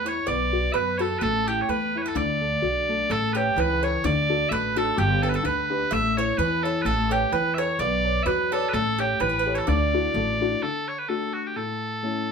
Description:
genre	celtic folk, Celtic polka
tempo	128 BPM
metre	2/4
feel	swing 54% on 8ths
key	D major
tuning	A4 = 441 Hz
part	loud bright bagpipes	melody	0.0-12.3 s	F#4 to E5	-26 LUFS	right 1 dB	none
part	bowl-back mandolin	second line	0.0-10.4 s	G4 to E5	-29 LUFS	right 9 dB	none
part	warm upright piano	accompaniment	0.0-12.3 s	A2 to D5	-27 LUFS	left 5 dB	none
part	upright bass	bass	0.0-10.5 s	G1 to F#2	-28 LUFS	equal	none
room	moderate studio ambience, RT60 0.5 s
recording	band playing live in one room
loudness	-22 LUFS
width	side -6 dB against mid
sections	0.0-3.1 A section; 3.1-10.6 A section; 10.6-12.3 B section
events	none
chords	0.3 Bm; 1.2 A5; 2.2 D; 3.1 Aadd9; 4.0 D; 5.0 G; 5.9 A; 6.9 Aadd9; 7.8 Bmadd9; 8.7 A7; 9.7 Dadd9; 10.6 D; 11.6 A

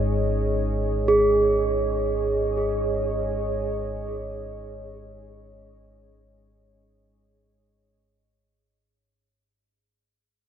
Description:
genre	dark ambient drone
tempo	free time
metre	none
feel	none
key	unclear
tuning	A4 = 438 Hz
part	dark analog pad	sustained chords	0.0-7.9 s	G#4 to D#5	-28 LUFS	equal	chorus
part	deep rumbling drone	drone	0.0-8.0 s	G#1 to G#2	-29 LUFS	equal	built-in reverb
part	bronze singing bowl	texture	0.0-7.9 s	none	barely audible	none	none
part	gamelan-type bronze metallophone	arpeggios	1.1-7.1 s	G#4	-23 LUFS	right 2 dB	tape echo
room	wet cathedral reverb, RT60 5.5 s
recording	in a vast, echoing space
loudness	-21 LUFS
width	side -9 dB against mid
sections	0.0-7.9 A section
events	fade-out 0.0-7.9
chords	0.0 G#5

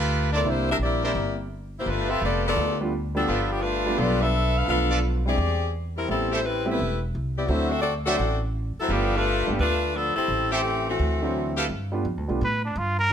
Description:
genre	jazz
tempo	171 BPM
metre	4/4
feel	swing 65% on 8ths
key	G mixolydian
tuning	A4 = 439 Hz
part	clear trumpet section	stabs	0.0-11.7 s	D4 to F5	-29 LUFS	right 3 dB	none
part	upright bass	bass	0.0-13.1 s	E1 to A2	-27 LUFS	equal	none
part	clear saxophone section	melody	0.4-11.5 s	E3 to F5	-25 LUFS	left 2 dB	none
part	clear grand piano	accompaniment	0.4-13.1 s	F3 to G4	-29 LUFS	right 2 dB	none
part	trumpet with straight mute	melody	12.4-13.1 s	D4 to B4	-24 LUFS	right 1 dB	none
room	light reverb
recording	none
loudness	-22 LUFS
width	side -8 dB against mid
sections	0.0-11.7 A section; 11.7-13.1 B section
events	muted trumpet solo 11.7-13.1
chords	0.5 C9; 1.9 G9; 4.7 Bm7b5; 5.4 E7alt; 6.1 Am7; 7.5 D9; 8.9 G9; 10.3 Am7; 11.0 D9; 11.7 G9

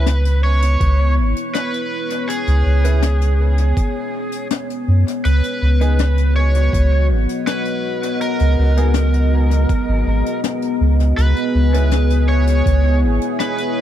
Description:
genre	ambient dub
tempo	81 BPM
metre	4/4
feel	straight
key	C# dorian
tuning	A4 = 440 Hz
part	overdriven slide guitar	melody	0.0-13.8 s	G#4 to C#5	-24 LUFS	equal	dub echo
part	deep dark ambient pad	sustained chords	0.1-13.8 s	B3 to D#5	-22 LUFS	left 2 dB	chorus, built-in reverb
part	bright upright piano	stabs	0.0-11.9 s	B3 to B4	-31 LUFS	right 3 dB	dub echo
part	soft dub sub bass	bass	0.0-13.2 s	G#1 to F#2	-14 LUFS	equal	none
part	soft brush drum kit	drums	0.1-13.7 s	hi-hat, snare drum	-27 LUFS	left 8 dB	dub echo
part	electronic kick drum	drums	0.8-12.8 s	none	-19 LUFS	equal	none
part	bubbling stepped-filter texture	texture	11.4-13.8 s	G#4	-29 LUFS	right 4 dB	chorus, built-in reverb
room	small room ambience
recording	echo-heavy mix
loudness	-14 LUFS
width	side -11 dB against mid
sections	0.0-13.8 A section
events	none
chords	0.0 C#m7; 5.2 B6; 11.2 C#m7

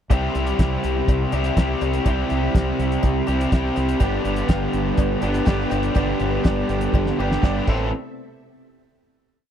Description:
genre	classic rock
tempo	123 BPM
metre	4/4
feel	straight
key	unclear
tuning	A4 = 440 Hz
part	string machine, cellos	sustained chords	0.1-8.0 s	B3 to E5	-31 LUFS	equal	ensemble chorus
part	cranked stack guitar	riff	0.1-7.9 s	G2 to A4	-22 LUFS	left 1 dB	overdrive
part	growling fingered electric bass	bass	0.1-7.9 s	G1 to C2	-25 LUFS	equal	overdrive
part	cloth-damped thuddy drum kit	drums	0.1-7.8 s	crash cymbal, hi-hat, kick drum, snare drum, toms	-19 LUFS	equal	none
part	cowbell	percussion	0.1-7.9 s	none	-35 LUFS	left 15 dB	none
part	bright grand piano	accompaniment	4.0-7.9 s	G4 to F5	-30 LUFS	right 10 dB	none
room	little or no reverb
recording	dry, close 1970s-style studio recording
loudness	-19 LUFS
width	side -9 dB against mid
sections	0.1-7.9 pre-chorus; 7.9-9.5 final hit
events	drum fill 7.0-7.9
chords	0.1 C; 4.0 G; 7.7 Am

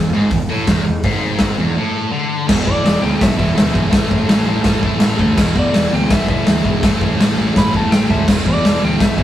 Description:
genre	garage rock duo or trio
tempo	166 BPM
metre	4/4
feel	straight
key	E mixolydian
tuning	A4 = 440 Hz
part	thick fuzz guitar	riff	0.0-9.2 s	E2 to A3	-17 LUFS	equal	distortion
part	fuzz picked electric bass	bass	0.0-9.2 s	E1 to E2	-24 LUFS	equal	overdrive
part	raw garage drum kit	drums	0.3-9.2 s	crash cymbal, hi-hat, kick drum, snare drum	-16 LUFS	equal	none
part	electric slide guitar	melody	2.7-9.2 s	D5 to B5	-23 LUFS	equal	none
room	light reverb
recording	rough rehearsal-room recording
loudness	-13 LUFS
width	side -12 dB against mid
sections	0.0-2.5 A section; 2.5-9.2 B section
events	break 1.8-2.5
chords	0.0 E; 2.5 E5; 3.9 A5; 5.4 E5; 6.8 A5; 8.3 E5

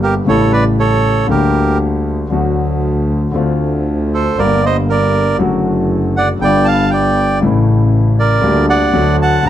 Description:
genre	tango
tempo	118 BPM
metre	4/4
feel	rubato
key	G minor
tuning	A4 = 440 Hz
part	bandoneon	melody	0.0-9.5 s	G4 to A5	-14 LUFS	right 3 dB	plate reverb
part	warm concert grand piano	accompaniment	0.0-9.5 s	G1 to G4	-15 LUFS	left 3 dB	none
part	clear double bass	bass	0.0-9.5 s	F#1 to D2	-16 LUFS	right 1 dB	none
room	light reverb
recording	none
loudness	-11 LUFS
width	side -11 dB against mid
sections	0.0-9.5 A section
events	none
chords	0.3 A7; 1.3 Gm/D; 2.3 D; 3.4 Dm7; 4.4 Gm; 5.4 D/F#; 6.4 G7; 7.4 A; 8.4 Gm/D; 8.9 D

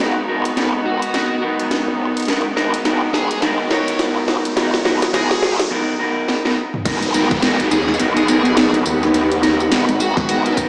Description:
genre	glitch hop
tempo	105 BPM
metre	4/4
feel	swing 60% on 16ths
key	G# minor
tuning	A4 = 441 Hz
part	clear symphonic string section	sustained chords	0.0-10.7 s	G#3 to F#4	-28 LUFS	equal	sidechain pumping
part	electric guitar at the edge of break-up	stabs	0.0-10.7 s	B3 to A#4	-24 LUFS	equal	vintage 12-bit sampler grit, sidechain pumping, low-pass filter, tape echo
part	growl bass	bass	0.0-10.4 s	F#1 to D#2	-22 LUFS	equal	chorus, high-pass filter
part	drum and bass drum kit	drums	0.0-10.7 s	crash cymbal, hi-hat, snare drum, tambourine, toms	-23 LUFS	equal	overdrive
part	riser and downlifter	sound effects	1.5-10.7 s	none	-31 LUFS	equal	none
part	dark smooth lead guitar	melody	0.9-10.6 s	F#4 to C#5	-27 LUFS	equal	overdrive, low-pass filter, tape echo
part	electronic kick drum	drums	6.9-10.7 s	none	-24 LUFS	equal	overdrive
room	moderate lush hall reverb, RT60 2.5 s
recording	played on a big sound system in a bare room, stone room reverb, small speaker sound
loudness	-18 LUFS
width	mono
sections	0.0-6.9 A section; 6.9-10.7 B section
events	build-up 0.0-6.9; drum fill 0.0-5.7, 6.3-6.9; filter sweep on lead electric guitar 0.0-6.9; break 5.7-6.9; drop 6.9-10.7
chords	0.0 G#m7

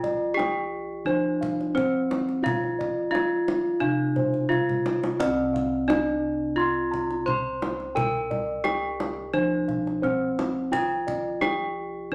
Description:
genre	Javanese gamelan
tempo	87 BPM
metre	4/4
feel	straight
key	C slendro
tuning	A4 = 442 Hz
part	gamelan-type bronze metallophone	melody	0.0-12.1 s	C4 to C5	-29 LUFS	equal	none
part	gamelan-type bossed gongs	arpeggios	0.0-11.8 s	C5 to C6	-32 LUFS	equal	none
part	gamelan-type bossed gongs	bass	0.0-12.1 s	C2 to Bb4-40c	-35 LUFS	equal	none
part	kendang	percussion	0.0-11.6 s	none	-34 LUFS	equal	none
room	moderate large studio reverb, RT60 0.8 s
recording	none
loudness	-26 LUFS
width	mono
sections	0.0-12.1 A section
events	drum fill 4.5-5.2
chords	none

